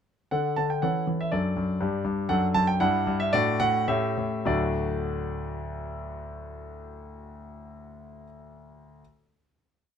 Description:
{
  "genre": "classical-period piano sonatina",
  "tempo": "101-123 BPM",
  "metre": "2/4",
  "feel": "straight",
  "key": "D major",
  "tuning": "A4 = 441 Hz",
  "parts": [
    { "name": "clear concert grand piano", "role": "solo", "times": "0.3-9.0 s", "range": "D2 to A5", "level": "-25 LUFS", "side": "equal", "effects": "none" }
  ],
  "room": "light reverb",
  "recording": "close, detailed microphones",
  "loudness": "-24 LUFS",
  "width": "side -8 dB against mid",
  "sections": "0.3-4.5 A section; 4.5-6.8 final chord",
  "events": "slowing down 1.8-4.5",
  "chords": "0.3 D; 0.8 A/E; 1.3 D/F#; 1.8 G5; 2.3 D/F#; 2.8 Em7/G; 3.3 D/A; 3.9 A7; 4.5 D"
}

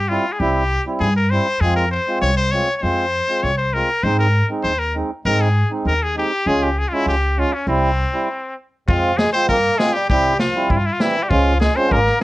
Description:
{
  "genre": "klezmer",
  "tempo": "99 BPM",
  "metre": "2/4",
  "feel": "straight",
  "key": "unclear",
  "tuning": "A4 = 443 Hz",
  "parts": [
    { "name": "cornet with straight mute", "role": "melody", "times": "0.0-12.2 s", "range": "C4 to Db5", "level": "-20 LUFS", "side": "left 2 dB", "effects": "none" },
    { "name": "upright bass", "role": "bass", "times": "0.0-12.1 s", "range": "Ab1 to Ab2", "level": "-20 LUFS", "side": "equal", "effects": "none" },
    { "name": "mellow accordion", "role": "accompaniment", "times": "0.1-12.2 s", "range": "G3 to F4", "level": "-22 LUFS", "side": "right 2 dB", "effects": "none" },
    { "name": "trombone with straight mute", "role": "second line", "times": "8.9-12.2 s", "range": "E3 to C4", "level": "-22 LUFS", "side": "right 1 dB", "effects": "none" },
    { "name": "vintage drum kit", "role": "drums", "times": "8.9-12.1 s", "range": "kick drum, snare drum", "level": "-22 LUFS", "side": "equal", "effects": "none" }
  ],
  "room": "light reverb",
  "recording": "worn, warbling old tape, cassette tape, warbly pitch drift",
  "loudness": "-16 LUFS",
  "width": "side -18 dB against mid",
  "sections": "0.0-8.9 A section; 8.9-12.2 B section",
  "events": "stop 8.3-8.9",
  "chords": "0.0 C; 1.6 Fm; 4.0 Ab; 6.5 Db; 7.7 C; 8.9 Fm; 10.1 C; 11.3 Db"
}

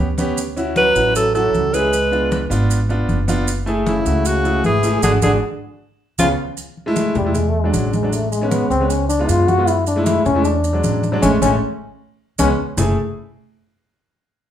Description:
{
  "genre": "Afro-Cuban jazz",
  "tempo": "155 BPM",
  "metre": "4/4",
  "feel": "straight",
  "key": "F# minor",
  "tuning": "A4 = 440 Hz",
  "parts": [
    { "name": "clear concert grand piano", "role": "accompaniment", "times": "0.0-13.0 s", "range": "F#3 to G#4", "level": "-21 LUFS", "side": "equal", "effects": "none" },
    { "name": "upright bass", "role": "bass", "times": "0.0-13.0 s", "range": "F#1 to F#2", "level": "-21 LUFS", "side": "equal", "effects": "none" },
    { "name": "congas", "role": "percussion", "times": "0.2-12.9 s", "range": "none", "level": "-25 LUFS", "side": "equal", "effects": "none" },
    { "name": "maracas", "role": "percussion", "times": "0.2-12.9 s", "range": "none", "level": "-30 LUFS", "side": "right 6 dB", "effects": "none" },
    { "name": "breathy alto saxophone", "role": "melody", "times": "0.8-6.3 s", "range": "E4 to B4", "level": "-17 LUFS", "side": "right 1 dB", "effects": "none" },
    { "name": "warm trombone", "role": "second line", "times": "0.8-12.5 s", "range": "C#3 to F#4", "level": "-20 LUFS", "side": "left 2 dB", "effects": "none" }
  ],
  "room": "wet large studio reverb, RT60 0.8 s",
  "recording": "band playing live in one room",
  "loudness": "-15 LUFS",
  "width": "side -10 dB against mid",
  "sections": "0.0-6.6 A section; 6.6-12.8 B section; 12.8-14.3 C section",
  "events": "band accent 5.0-6.6, 11.2-12.8; trombone solo 6.6-12.8",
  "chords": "0.4 Dmaj9; 1.9 C#7b9; 3.5 F#m9; 5.0 F#sus2/G#; 5.8 C#7; 6.6 Eadd11; 7.4 E7; 8.1 Amaj7; 8.9 C#7; 9.7 F#m7; 10.5 E7; 11.2 Amaj7; 12.0 C#5; 12.8 F#m7"
}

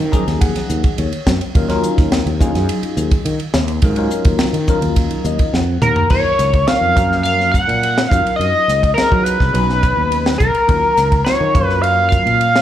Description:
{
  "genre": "electric jazz fusion",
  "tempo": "105 BPM",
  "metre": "4/4",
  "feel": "straight",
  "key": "Eb minor",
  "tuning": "A4 = 440 Hz",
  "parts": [
    { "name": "sustaining fretless electric bass", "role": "bass", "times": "0.0-12.6 s", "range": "B1 to Gb3", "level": "-19 LUFS", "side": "equal", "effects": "none" },
    { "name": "bell-like tine electric piano", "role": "accompaniment", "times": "0.1-12.5 s", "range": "F3 to Bb5", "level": "-22 LUFS", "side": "left 1 dB", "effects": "fast stereo tremolo, phaser, slapback echo" },
    { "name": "tight funk drum kit", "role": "drums", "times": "0.1-12.6 s", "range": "crash cymbal, hi-hat, kick drum, ride cymbal, snare drum, toms", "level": "-18 LUFS", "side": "equal", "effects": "none" },
    { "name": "sync lead", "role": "melody", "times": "5.8-12.6 s", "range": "Bb4 to Gb5", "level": "-15 LUFS", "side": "equal", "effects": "chorus, slapback echo" }
  ],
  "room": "studio reverb",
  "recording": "live gig heard through the venue's PA, club reverb",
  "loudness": "-13 LUFS",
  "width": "side -11 dB against mid",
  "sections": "0.0-6.1 A section; 6.1-12.6 B section",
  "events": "tine electric piano fill 0.0-1.5, 5.0-6.1; drum fill 5.5-6.1",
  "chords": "0.0 Ebm9; 7.0 Gbmaj7; 8.1 Ebm9; 9.5 Badd9; 10.7 Ebm9; 11.5 Gbmaj7"
}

